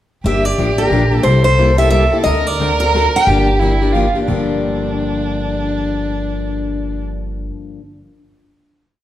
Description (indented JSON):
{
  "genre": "acoustic string swing (jazz manouche)",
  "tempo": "178 BPM",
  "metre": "3/4",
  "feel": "swing 61% on 8ths",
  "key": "G dorian",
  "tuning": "A4 = 440 Hz",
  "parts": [
    { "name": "rich violin", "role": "second line", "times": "0.2-7.0 s", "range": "D4 to Bb4", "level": "-21 LUFS", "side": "right 4 dB", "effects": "none" },
    { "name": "upright bass", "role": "bass", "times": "0.2-7.5 s", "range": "G1 to D2", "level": "-18 LUFS", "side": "equal", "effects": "none" },
    { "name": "picked steel-string acoustic guitar", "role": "melody", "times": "0.3-3.9 s", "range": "Bb4 to G5", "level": "-16 LUFS", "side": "equal", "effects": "none" },
    { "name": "picked plugged-in steel-string acoustic guitar", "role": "accompaniment", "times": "0.3-7.8 s", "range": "G2 to A4", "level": "-20 LUFS", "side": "left 4 dB", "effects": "none" }
  ],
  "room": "wet large studio reverb, RT60 1.5 s",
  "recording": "band playing live in one room",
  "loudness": "-13 LUFS",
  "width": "side -12 dB against mid",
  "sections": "0.2-4.3 A section; 4.3-6.3 final chord",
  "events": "none",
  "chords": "0.2 Gm7; 1.2 C7; 2.3 D7b13; 3.3 Gm7"
}